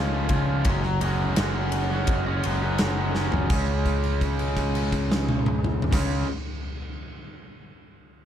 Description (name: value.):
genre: classic rock.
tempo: 84 BPM.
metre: 4/4.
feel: straight.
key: Db major.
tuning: A4 = 442 Hz.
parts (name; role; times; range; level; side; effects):
raw garage guitar; riff; 0.0-6.3 s; Db3 to Gb4; -27 LUFS; equal; overdrive.
growling picked electric bass; bass; 0.0-6.2 s; Gb1 to Db2; -26 LUFS; equal; overdrive.
huge arena drum kit; drums; 0.3-6.1 s; crash cymbal, kick drum, ride cymbal, snare drum, toms; -27 LUFS; equal; none.
room: small room ambience.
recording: none.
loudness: -22 LUFS.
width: side -10 dB against mid.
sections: 0.0-3.5 A section; 3.5-6.4 B section.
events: drum fill 3.2-3.5; held note 3.5-5.9.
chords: 0.0 Db; 0.7 Gbsus2; 3.5 Db5.